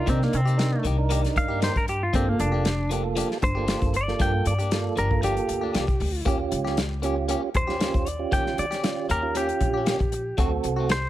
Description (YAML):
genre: straight-eighth soul blues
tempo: 116 BPM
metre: 4/4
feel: swing 53% on 16ths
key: G minor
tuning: A4 = 439 Hz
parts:
  - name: clean electric guitar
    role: melody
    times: 0.0-11.1 s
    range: Bb3 to G5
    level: -27 LUFS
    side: equal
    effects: warbly pitch drift
  - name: tonewheel organ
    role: accompaniment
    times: 0.0-10.9 s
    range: Bb3 to Bb4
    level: -29 LUFS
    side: right 7 dB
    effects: slow rotary speaker, overdrive
  - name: direct-recorded clean electric guitar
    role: stabs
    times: 0.1-10.9 s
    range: Eb3 to G4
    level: -33 LUFS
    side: left 5 dB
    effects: none
  - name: upright bass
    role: bass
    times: 0.1-11.1 s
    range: F1 to Eb3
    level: -27 LUFS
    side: equal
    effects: none
  - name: warm soul drum kit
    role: drums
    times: 0.1-11.0 s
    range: hi-hat, kick drum, snare drum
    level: -27 LUFS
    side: left 1 dB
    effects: none
room: studio reverb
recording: none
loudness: -22 LUFS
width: side -14 dB against mid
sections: 0.0-11.1 A section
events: clean electric guitar solo 0.0-11.1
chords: 0.0 Cm7; 2.1 Gm7; 6.3 Eb7; 10.4 D7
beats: | 0.07 0.59 1.10 1.62 | 2.13 2.65 3.16 3.68 | 4.20 4.71 5.22 5.74 | 6.25 6.77 7.29 7.80 | 8.32 8.83 9.35 9.86 | 10.38 10.89